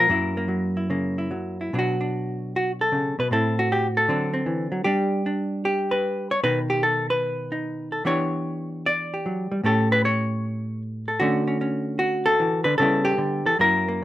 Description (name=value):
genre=solo jazz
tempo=152 BPM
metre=4/4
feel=swing 67% on 8ths, rubato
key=B minor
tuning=A4 = 441 Hz
part: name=hollow-body jazz guitar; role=solo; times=0.0-14.0 s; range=Gb2 to D5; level=-21 LUFS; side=equal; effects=none
room=light reverb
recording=minimal, uncompressed stereo recording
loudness=-21 LUFS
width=side -14 dB against mid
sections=0.0-1.7 A section; 1.7-14.0 B section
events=none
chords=0.1 Gb7; 1.7 Bm7; 3.3 Am; 4.1 D7; 4.8 G; 6.4 B7; 8.0 Em7; 9.6 A7; 11.2 Dmaj7; 12.8 C#m7b5